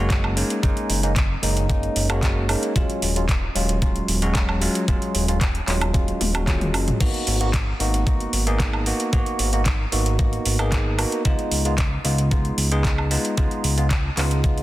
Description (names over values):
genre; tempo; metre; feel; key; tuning
nu-disco, nu disco; 113 BPM; 4/4; straight; G# dorian; A4 = 439 Hz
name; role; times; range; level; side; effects
bell-like tine electric piano; accompaniment; 0.0-14.6 s; F#3 to G#4; -25 LUFS; equal; phaser, sidechain pumping, analog delay
fat analog bass; bass; 0.0-14.6 s; D#1 to C#2; -23 LUFS; equal; none
electronic kick drum; drums; 0.1-14.5 s; none; -22 LUFS; equal; studio reverb
pop drum kit; drums; 0.1-14.6 s; crash cymbal, handclaps, hi-hat, toms, woodblock; -26 LUFS; right 1 dB; studio reverb
room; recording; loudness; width
digital ambience; dense, heavily limited modern master; -19 LUFS; side -16 dB against mid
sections
0.0-14.6 A section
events
drum fill 6.2-7.0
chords
0.0 F#69; 2.8 D#m11; 7.0 G#m9; 11.3 C#9